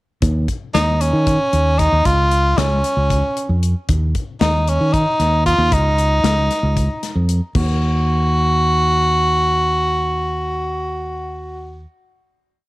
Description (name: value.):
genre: progressive instrumental, band music in an uneven meter.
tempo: 229 BPM (eighths).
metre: 7/8.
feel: straight.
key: Eb minor.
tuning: A4 = 440 Hz.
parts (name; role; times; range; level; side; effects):
fingered electric bass; bass; 0.2-11.8 s; Db2 to Eb3; -18 LUFS; equal; none.
modern studio drum kit; drums; 0.2-7.7 s; crash cymbal, hi-hat, kick drum, snare drum; -23 LUFS; left 2 dB; none.
clear tenor saxophone; melody; 0.7-11.8 s; Db4 to Gb4; -18 LUFS; equal; none.
room: light reverb, small room ambience.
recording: 1960s-style stereo.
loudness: -15 LUFS.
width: side -18 dB against mid.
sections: 0.2-7.5 groove; 7.5-11.2 final chord.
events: none.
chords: 0.2 Dbsus2/Eb; 2.1 Db; 3.9 N.C.; 5.7 Dbadd9; 7.5 Ebm.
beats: | 0.22 0.48 0.74 1.00 1.27 1.53 1.79 | 2.05 2.31 2.57 2.84 3.10 3.36 3.62 | 3.88 4.14 4.41 4.67 4.93 5.19 5.45 | 5.72 5.98 6.24 6.50 6.76 7.03 7.29 | 7.55 7.81 8.07 8.33 8.60 8.86 9.12 | 9.38 9.64 9.90 10.16 10.43 10.69 10.95.